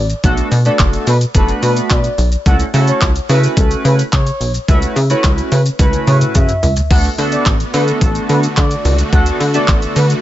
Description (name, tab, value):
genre	dance-pop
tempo	108 BPM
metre	4/4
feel	straight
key	unclear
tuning	A4 = 436 Hz
part	expressive synth lead	melody	0.0-10.1 s	A4 to F#5	-21 LUFS	equal	chorus, sidechain pumping, ping-pong delay
part	plucky analog bass	bass	0.0-10.1 s	F#1 to D3	-14 LUFS	equal	sidechain pumping
part	pop drum kit	drums	0.1-10.2 s	crash cymbal, handclaps, hi-hat, kick drum, shaker, toms	-15 LUFS	equal	overdrive
part	chorused polysynth	accompaniment	0.2-10.0 s	A3 to B4	-19 LUFS	right 1 dB	sidechain pumping
part	supersaw pad	sustained chords	6.9-10.2 s	D3 to F#4	-23 LUFS	equal	sidechain pumping
room	little or no reverb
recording	nothing above 7.8 kHz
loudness	-11 LUFS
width	side -13 dB against mid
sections	0.0-10.2 A section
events	drum fill 5.8-6.9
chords	0.0 Bm7; 2.5 F#m7; 6.9 D6